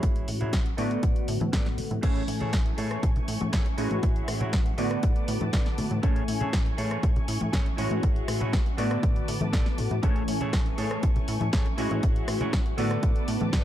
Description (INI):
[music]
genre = filtered disco house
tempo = 120 BPM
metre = 4/4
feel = straight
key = A major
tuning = A4 = 441 Hz
[part]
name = funky polysynth comp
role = accompaniment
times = 0.0-13.6 s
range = D3 to G#5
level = -32 LUFS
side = equal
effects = chorus, phaser, sidechain pumping, low-pass filter
[part]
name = clean electric guitar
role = riff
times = 0.0-13.6 s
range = E4 to D5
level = -37 LUFS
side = right 3 dB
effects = sidechain pumping, low-pass filter
[part]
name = plucky analog bass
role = bass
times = 0.0-13.6 s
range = A1 to A2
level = -31 LUFS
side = equal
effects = sidechain pumping, low-pass filter
[part]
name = electronic kick drum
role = drums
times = 0.0-13.6 s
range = none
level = -25 LUFS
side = equal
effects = none
[part]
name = punchy analog drum machine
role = drums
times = 0.0-13.6 s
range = crash cymbal, hi-hat, rim click, snare drum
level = -35 LUFS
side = equal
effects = sidechain pumping on hats, sidechain pumping on cymbals
[part]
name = tambourine and congas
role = percussion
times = 0.0-13.6 s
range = none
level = -33 LUFS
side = left 2 dB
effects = sidechain pumping on perc, low-pass filter on perc
[part]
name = rich symphonic violin section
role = sustained chords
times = 2.0-13.6 s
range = A3 to D6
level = -40 LUFS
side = equal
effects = sidechain pumping, low-pass filter
[sound]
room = digital ambience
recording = dark, warm production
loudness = -24 LUFS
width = side -12 dB against mid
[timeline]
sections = 0.0-13.6 A section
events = none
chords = 0.0 F#m9/A; 0.8 Bm7/A; 2.0 Amaj7; 3.8 F#m9/A; 4.8 Bm7/A; 6.0 Amaj7; 7.8 F#m9/A; 8.8 Bm7/A; 10.0 Amaj7; 11.8 F#m9/A; 12.8 Bm7/A